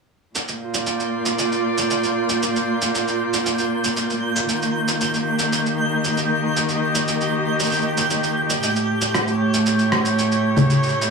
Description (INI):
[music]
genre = folktronica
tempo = 116 BPM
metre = 4/4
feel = straight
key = Bb major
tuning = A4 = 440 Hz
[part]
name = warm string quartet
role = sustained chords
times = 0.3-11.1 s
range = A2 to Eb5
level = -20 LUFS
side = right 1 dB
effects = none
[part]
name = twinkling granular texture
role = texture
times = 0.8-11.1 s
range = G6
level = -27 LUFS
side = equal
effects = built-in reverb
[part]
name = electronic shaker, rim click and congas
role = drums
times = 0.4-11.1 s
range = none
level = -22 LUFS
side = right 1 dB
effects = none
[sound]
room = wet studio reverb, RT60 0.6 s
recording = small room ambience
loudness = -18 LUFS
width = side -4 dB against mid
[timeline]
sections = 0.3-11.1 A section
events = none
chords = 0.3 Bb; 4.5 Eb; 8.6 A7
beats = | 0.35 0.86 1.38 1.90 | 2.42 2.93 3.45 3.97 | 4.49 5.00 5.52 6.04 | 6.55 7.07 7.59 8.11 | 8.62 9.14 9.66 10.18 | 10.69